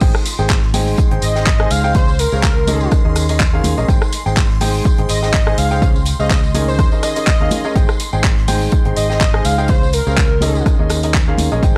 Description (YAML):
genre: piano house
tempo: 124 BPM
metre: 4/4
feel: swing 55% on 16ths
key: Ab major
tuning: A4 = 440 Hz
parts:
  - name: string machine, violins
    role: sustained chords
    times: 0.0-11.8 s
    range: C6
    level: -35 LUFS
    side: equal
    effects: ensemble chorus, sidechain pumping
  - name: clear upright piano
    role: riff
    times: 0.0-11.8 s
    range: Db3 to Ab5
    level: -24 LUFS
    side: equal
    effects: sidechain pumping
  - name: fingered electric bass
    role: bass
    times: 0.0-11.7 s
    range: Ab1 to Eb2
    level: -21 LUFS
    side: equal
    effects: tube saturation, sidechain pumping
  - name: deep reggae drum kit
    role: drums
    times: 0.0-11.8 s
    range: hi-hat, snare drum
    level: -35 LUFS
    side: equal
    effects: none
  - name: electronic kick drum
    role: drums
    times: 0.0-11.7 s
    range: none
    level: -18 LUFS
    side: equal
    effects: none
  - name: garage drum kit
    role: drums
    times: 0.0-11.5 s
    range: crash cymbal, handclaps, hi-hat, rim click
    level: -24 LUFS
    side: equal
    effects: none
  - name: tambourine and congas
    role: percussion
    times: 0.0-11.7 s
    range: none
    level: -30 LUFS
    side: equal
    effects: none
  - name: granular cloud pad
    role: texture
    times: 4.2-11.6 s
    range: none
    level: barely audible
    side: none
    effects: none
  - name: airy dreamy lead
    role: melody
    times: 1.2-10.6 s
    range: Bb4 to F5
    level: -24 LUFS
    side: equal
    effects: chorus, tape echo
room: studio reverb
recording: dry, gritty hardware recording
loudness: -15 LUFS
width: mono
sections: 0.0-11.8 A section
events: drop 0.0-11.8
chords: 0.0 Abmaj7; 1.9 Dbmaj7; 2.9 Eb7sus4; 3.9 Abmaj7; 5.8 Dbmaj7; 6.8 Eb7sus4; 7.8 Abmaj7; 9.7 Dbmaj7; 10.7 Eb7sus4